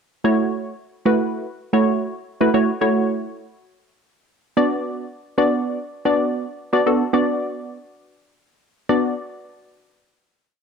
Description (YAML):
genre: dance-pop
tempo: 111 BPM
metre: 4/4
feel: straight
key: B minor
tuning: A4 = 440 Hz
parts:
  - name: wavetable chord stab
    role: solo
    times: 0.2-9.1 s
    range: A3 to D5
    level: -18 LUFS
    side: equal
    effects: none
room: moderate spring reverb, RT60 1.3 s, digital ambience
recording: dark, warm production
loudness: -19 LUFS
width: side -6 dB against mid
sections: 0.2-8.9 verse; 8.9-10.6 final chord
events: none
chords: 0.2 F#m7; 4.6 Bm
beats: | 0.24 0.79 1.32 1.87 | 2.41 2.95 3.49 4.03 | 4.57 5.11 5.65 6.19 | 6.73 7.27 7.81 8.35 | 8.89